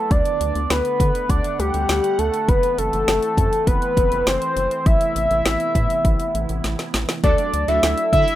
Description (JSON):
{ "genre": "synth-pop", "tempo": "101 BPM", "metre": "4/4", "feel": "straight", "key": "unclear", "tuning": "A4 = 440 Hz", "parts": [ { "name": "fat analog lead", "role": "melody", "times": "0.0-8.4 s", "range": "G4 to E5", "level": "-20 LUFS", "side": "equal", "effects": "chorus, ping-pong delay, plate reverb" }, { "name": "sweeping resonant pad", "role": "sustained chords", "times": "0.0-8.4 s", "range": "C3 to F#5", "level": "-30 LUFS", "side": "right 2 dB", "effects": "chorus" }, { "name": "rubbery square bass", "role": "bass", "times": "0.1-8.2 s", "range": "F#1 to D3", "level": "-24 LUFS", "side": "equal", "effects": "none" }, { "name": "deep house drum kit", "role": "drums", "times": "0.1-8.4 s", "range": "hi-hat, kick drum, snare drum", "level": "-20 LUFS", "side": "equal", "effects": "none" }, { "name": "funky polysynth comp", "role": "accompaniment", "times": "7.2-8.3 s", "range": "A3 to A4", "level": "-28 LUFS", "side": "equal", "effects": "chorus, plate reverb" } ], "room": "light reverb", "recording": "rough home demo mix", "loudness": "-17 LUFS", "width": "side -13 dB against mid", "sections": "0.0-7.2 A section; 7.2-8.4 B section", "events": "drum fill 6.6-7.2", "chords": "0.1 Bm7/D; 2.5 F#m7b5; 4.9 Amadd9; 7.2 D", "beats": "| 0.11 0.70 1.30 1.89 | 2.48 3.08 3.67 4.27 | 4.86 5.46 6.05 6.64 | 7.24 7.83" }